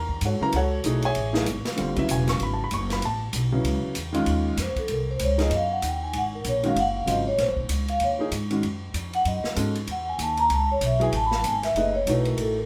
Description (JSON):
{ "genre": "modal jazz", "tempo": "192 BPM", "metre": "4/4", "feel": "swing 61% on 8ths", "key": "unclear", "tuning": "A4 = 440 Hz", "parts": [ { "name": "warm concert grand piano", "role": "accompaniment", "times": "0.0-12.5 s", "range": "Db3 to Db6", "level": "-29 LUFS", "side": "equal", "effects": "none" }, { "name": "upright bass", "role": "bass", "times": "0.0-12.7 s", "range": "Eb1 to Ab2", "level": "-30 LUFS", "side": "equal", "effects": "none" }, { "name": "open jazz drum kit", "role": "drums", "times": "0.1-12.5 s", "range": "hi-hat, kick drum, ride cymbal, snare drum", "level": "-35 LUFS", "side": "equal", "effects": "none" }, { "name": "vibraphone with soft mallets", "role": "melody", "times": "4.6-12.7 s", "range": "A4 to Cb6", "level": "-27 LUFS", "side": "equal", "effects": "none" } ], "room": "light reverb", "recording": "band playing live in one room", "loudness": "-25 LUFS", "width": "mono", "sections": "0.0-4.3 A section; 4.3-12.7 A section", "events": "vibraphone solo 4.3-12.7", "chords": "0.0 Gbm9; 4.3 Ebm9; 9.3 Gbm9" }